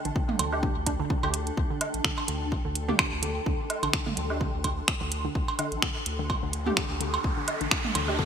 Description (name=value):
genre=minimal techno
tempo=127 BPM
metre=4/4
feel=swing 56% on 16ths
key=unclear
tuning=A4 = 440 Hz
part: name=granular cloud pad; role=texture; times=0.0-8.3 s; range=D4 to C6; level=-36 LUFS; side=equal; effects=built-in reverb, ensemble chorus, sidechain pumping
part: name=hollow square pluck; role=riff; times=0.1-8.2 s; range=D3 to D4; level=-36 LUFS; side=right 1 dB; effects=chorus, phaser, sidechain pumping, ping-pong delay
part: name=saturated sub bass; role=bass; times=0.1-8.2 s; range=A1 to D2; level=-34 LUFS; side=left 1 dB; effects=sidechain pumping
part: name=house drum kit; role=drums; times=0.1-8.1 s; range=finger snaps, hi-hat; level=-28 LUFS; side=equal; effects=none
part: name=electronic kick drum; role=drums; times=0.2-8.3 s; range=none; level=-30 LUFS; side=left 1 dB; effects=none
part: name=electronic toms, cowbell and woodblock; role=percussion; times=0.3-8.2 s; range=none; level=-33 LUFS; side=right 4 dB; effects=ping-pong delay
part: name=filtered dub chord stab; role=stabs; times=0.5-8.2 s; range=A3 to G4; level=-36 LUFS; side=left 1 dB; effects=phaser, ensemble chorus, vintage 12-bit sampler grit, ping-pong delay
part: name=riser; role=sound effects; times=6.3-8.3 s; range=none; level=-35 LUFS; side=right 1 dB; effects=none
room=moderate lush hall reverb, RT60 2.5 s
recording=bright 1980s-style digital production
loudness=-25 LUFS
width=side -8 dB against mid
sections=0.0-8.3 A section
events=filter sweep on synth arpeggio sound 0.0-8.3; riser 6.3-8.3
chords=0.0 Dsus4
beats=0.16 0.63 1.10 | 1.57 2.05 2.52 2.99 | 3.46 3.94 4.41 4.88 | 5.35 5.83 6.30 6.77 | 7.24 7.72 8.19